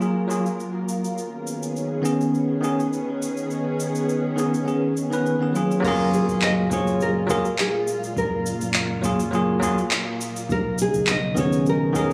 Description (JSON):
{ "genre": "sunset chillout", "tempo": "103 BPM", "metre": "4/4", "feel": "swing 53% on 16ths", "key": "F# major", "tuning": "A4 = 438 Hz", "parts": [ { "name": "bell-like tine electric piano", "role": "accompaniment", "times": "0.0-12.1 s", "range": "D#3 to B4", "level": "-25 LUFS", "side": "equal", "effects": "digital delay" }, { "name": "soft string machine", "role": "sustained chords", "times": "0.0-12.1 s", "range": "A#2 to A#4", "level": "-30 LUFS", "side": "equal", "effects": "ensemble chorus" }, { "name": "deep house drum kit", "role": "drums", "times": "0.0-12.1 s", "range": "cabasa, crash cymbal, handclaps", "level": "-31 LUFS", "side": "equal", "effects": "studio reverb" }, { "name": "nylon-string guitar", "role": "melody", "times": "5.8-12.1 s", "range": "G#4 to D#5", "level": "-28 LUFS", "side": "equal", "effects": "tape echo" }, { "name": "round analog bass", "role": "bass", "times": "5.8-12.0 s", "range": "F#1 to B1", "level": "-32 LUFS", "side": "equal", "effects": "none" }, { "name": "electronic kick drum", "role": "drums", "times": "5.8-12.1 s", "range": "none", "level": "-35 LUFS", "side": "equal", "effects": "overdrive, studio reverb" } ], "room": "moderate plate reverb, RT60 2.3 s", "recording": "recorded on a phone in the room, club reverb", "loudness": "-23 LUFS", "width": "mono", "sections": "0.0-5.8 A section; 5.8-12.1 B section", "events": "none", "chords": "0.0 F#maj9; 1.2 B69; 5.8 F#maj9; 10.5 B69" }